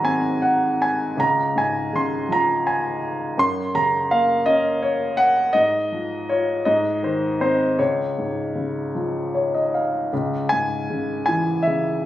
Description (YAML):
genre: classical, lyrical solo piano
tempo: 51-56 BPM (dotted quarters)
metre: 6/8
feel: rubato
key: Db major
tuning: A4 = 443 Hz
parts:
  - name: warm baby grand piano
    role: solo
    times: 0.0-12.1 s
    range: Db2 to C6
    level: -19 LUFS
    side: equal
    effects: none
room: light reverb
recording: recorded on a phone in the room, studio reverb, compression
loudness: -19 LUFS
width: side -13 dB against mid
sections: 0.0-10.1 A section; 10.1-12.1 B section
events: grand piano fill 8.9-10.1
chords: 0.0 Ab7; 1.2 Db; 3.4 Gb; 5.6 Dbadd9/Ab; 6.7 Ab; 7.8 Db; 10.1 C#m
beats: 0.04 | 1.18 2.30 | 3.39 4.46 | 5.55 6.66 | 7.78 8.94 | 10.12 11.28